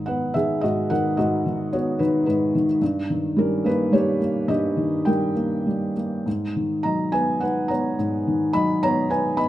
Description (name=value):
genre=classical, lyrical solo piano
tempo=98-112 BPM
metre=3/4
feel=rubato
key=G# minor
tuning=A4 = 440 Hz
part: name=felt-muted upright piano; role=solo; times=0.0-9.5 s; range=G2 to B5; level=-20 LUFS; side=equal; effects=none
room=moderate recital hall reverb, RT60 1.5 s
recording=close, detailed microphones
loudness=-20 LUFS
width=side -14 dB against mid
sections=0.0-9.5 A section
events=none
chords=0.0 G#m7; 2.8 D#7/G; 6.3 G#m7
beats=0.07 0.63 | 1.18 1.72 2.26 | 2.81 3.37 3.93 | 4.49 5.06 5.66 | 6.26 6.84 7.40 | 7.97 8.54 9.09